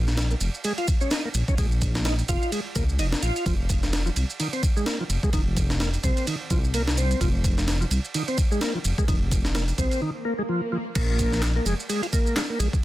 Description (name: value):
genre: breakbeat, breaks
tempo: 128 BPM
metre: 4/4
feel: swing 57% on 16ths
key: Bb minor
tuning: A4 = 438 Hz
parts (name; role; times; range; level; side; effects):
- dark detuned saw bass; bass; 0.0-12.7 s; F1 to Db2; -25 LUFS; equal; none
- breakbeat sampler-style drum kit; drums; 0.1-12.8 s; crash cymbal, kick drum, ride cymbal, snare drum; -25 LUFS; equal; studio reverb
- electronic shaker and handclaps; drums; 0.1-12.8 s; none; -35 LUFS; right 2 dB; overdrive, studio reverb
- tonewheel organ; riff; 0.3-12.7 s; Eb3 to F4; -29 LUFS; equal; chorus vibrato, slow rotary speaker, dub echo
- swell; sound effects; 10.2-11.0 s; none; -32 LUFS; right 3 dB; none
room: light reverb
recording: dense, heavily limited modern master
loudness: -22 LUFS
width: side -16 dB against mid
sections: 0.0-11.0 A section; 11.0-12.8 B section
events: break 10.0-11.0; swell 10.2-11.0; drop 11.0-12.8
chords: 0.0 Bbm7; 3.5 F7(no3); 11.0 Bb7(no3)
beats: 0.18 0.65 1.11 | 1.58 2.05 2.52 2.99 | 3.46 3.93 4.39 4.86 | 5.33 5.80 6.27 6.74 | 7.21 7.68 8.14 8.61 | 9.08 9.55 10.02 10.49 | 10.96 11.43 11.89 12.36